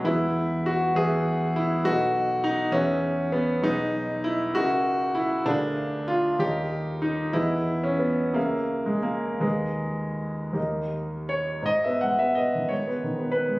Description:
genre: classical, romantic character piece for solo piano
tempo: 52-70 BPM (dotted quarters)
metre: 6/8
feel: rubato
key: G# minor from 3.7 s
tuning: A4 = 441 Hz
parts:
  - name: warm concert grand piano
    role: solo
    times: 0.0-13.6 s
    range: B1 to F#5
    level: -23 LUFS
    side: equal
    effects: none
room: moderate recital hall reverb, RT60 1.8 s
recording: recorded on a phone in the room, club reverb, compression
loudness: -23 LUFS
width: side -21 dB against mid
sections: 0.0-11.7 A section; 11.7-13.6 B section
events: none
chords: 0.1 E; 1.9 B7; 2.8 E; 3.7 G#m/B; 4.6 A#m7b5/C#; 5.5 A#7/D; 6.4 D#7; 7.4 Emaj7; 8.4 C#m; 9.4 G#m/D#; 10.6 D#; 11.7 G#m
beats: | 0.08 0.99 | 1.88 2.75 | 3.65 4.57 | 5.49 6.42 | 7.36 8.36 | 9.44 10.56 | 11.68 12.71

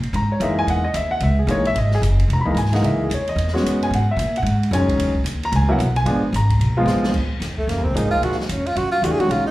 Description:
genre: modal jazz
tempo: 222 BPM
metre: 4/4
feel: swing 60% on 8ths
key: C# dorian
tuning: A4 = 440 Hz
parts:
  - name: upright bass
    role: bass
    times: 0.0-9.5 s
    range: E1 to A#2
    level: -20 LUFS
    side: equal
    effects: none
  - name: open jazz drum kit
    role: drums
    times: 0.0-9.4 s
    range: crash cymbal, hi-hat, kick drum, ride cymbal, snare drum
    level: -28 LUFS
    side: equal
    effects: none
  - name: warm grand piano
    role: accompaniment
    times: 0.2-9.4 s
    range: D#3 to B5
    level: -21 LUFS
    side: equal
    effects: slapback echo
  - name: warm tenor saxophone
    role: second line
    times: 7.6-9.5 s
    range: A3 to Ab4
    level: -21 LUFS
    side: right 1 dB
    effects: slapback echo
room: light reverb, small room ambience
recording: live gig heard through the venue's PA, club reverb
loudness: -17 LUFS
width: side -16 dB against mid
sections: 0.0-7.1 A section; 7.1-9.5 A section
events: drum fill 6.9; tenor saxophone solo 7.1-9.5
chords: 0.0 C#m69; 6.1 A#7b9; 7.1 Ebm11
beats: 0.14 0.41 | 0.68 0.94 1.21 1.48 | 1.75 2.02 2.29 2.56 | 2.83 3.10 3.37 3.64 | 3.91 4.18 4.45 4.72 | 4.99 5.26 5.53 5.80 | 6.07 6.34 6.61 6.88 | 7.15 7.42 7.68 7.96 | 8.22 8.49 8.77 9.04 | 9.30

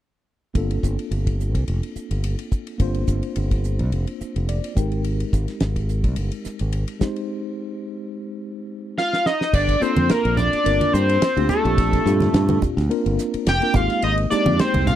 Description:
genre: electric jazz fusion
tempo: 107 BPM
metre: 4/4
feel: swing 54% on 16ths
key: G phrygian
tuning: A4 = 440 Hz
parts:
  - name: mellow tine electric piano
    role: accompaniment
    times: 0.5-15.0 s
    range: Bb2 to G5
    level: -26 LUFS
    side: left 1 dB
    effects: medium stereo tremolo
  - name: modern bright fingered electric bass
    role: bass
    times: 0.6-15.0 s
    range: F1 to G2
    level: -22 LUFS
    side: equal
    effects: none
  - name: damped 70s drum kit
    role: drums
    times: 0.6-15.0 s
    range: crash cymbal, hi-hat, kick drum, ride cymbal, snare drum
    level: -23 LUFS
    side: equal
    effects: none
  - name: octave-doubled lead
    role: melody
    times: 9.0-15.0 s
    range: A4 to G5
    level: -21 LUFS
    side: left 1 dB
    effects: chorus, slapback echo
  - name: raw garage guitar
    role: second line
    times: 9.0-15.0 s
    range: A3 to G4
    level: -26 LUFS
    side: right 1 dB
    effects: overdrive, slapback echo
  - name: congas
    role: percussion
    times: 10.0-15.0 s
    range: none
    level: -24 LUFS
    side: right 3 dB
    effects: none
room: little or no reverb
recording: dry, close 1970s-style studio recording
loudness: -19 LUFS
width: side -11 dB against mid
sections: 0.6-9.5 A section; 9.5-15.0 B section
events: tine electric piano fill 4.2-5.0; break 7.3-9.5; drum fill 9.0-9.5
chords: 0.6 Gm11; 4.8 Abmaj9; 9.5 Gm11; 13.7 Abmaj9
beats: | 0.55 1.11 1.68 2.24 | 2.80 3.36 3.92 4.49 | 5.05 5.61 6.17 6.73 | 7.29 7.85 8.41 8.98 | 9.54 10.10 10.66 11.22 | 11.78 12.34 12.90 13.46 | 14.03 14.59

